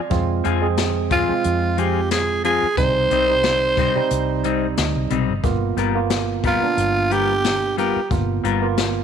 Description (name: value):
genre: straight-eighth soul blues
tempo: 90 BPM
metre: 4/4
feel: swing 55% on 16ths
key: C harmonic minor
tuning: A4 = 440 Hz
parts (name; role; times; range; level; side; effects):
- barky tine electric piano; accompaniment; 0.0-9.0 s; G3 to Eb5; -25 LUFS; right 13 dB; medium stereo tremolo
- vintage muted fingered electric bass; bass; 0.1-9.0 s; G1 to F2; -24 LUFS; equal; none
- jazz brush drum kit; drums; 0.1-8.9 s; hi-hat, kick drum, snare drum; -25 LUFS; left 5 dB; none
- clean electric guitar; stabs; 0.4-8.7 s; C3 to A#4; -25 LUFS; left 11 dB; wide subtle chorus
- growling tenor saxophone; melody; 1.1-8.1 s; F4 to C5; -20 LUFS; right 2 dB; none
room: light reverb, small room ambience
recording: 1960s-style stereo with parts hard left and right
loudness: -17 LUFS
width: side -7 dB against mid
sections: 0.0-9.0 A section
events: tine electric piano fill 4.4-5.4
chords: 0.0 Fm; 2.8 Cm; 5.4 G7#9